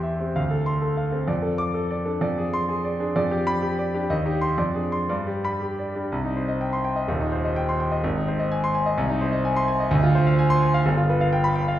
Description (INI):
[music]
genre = classical, virtuoso piano study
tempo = 127 BPM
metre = 2/4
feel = rubato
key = C minor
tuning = A4 = 440 Hz
[part]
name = clear concert grand piano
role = solo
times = 0.0-11.8 s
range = Eb1 to D6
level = -21 LUFS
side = equal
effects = none
[sound]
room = wet recital hall reverb, RT60 1.4 s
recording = heard from further back in the room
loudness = -21 LUFS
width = side -12 dB against mid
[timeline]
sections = 0.0-6.1 A section; 6.1-11.8 B section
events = none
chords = 0.4 Dm7; 1.3 Dm/F; 2.2 Dm7b5/F; 3.2 G7/F; 4.1 Cm/Eb; 4.6 Dm7b5/F; 5.1 G; 6.1 Cm; 7.1 Cm/Eb; 8.0 Ab; 9.0 Ab/C; 9.9 Dm7b5; 10.9 G7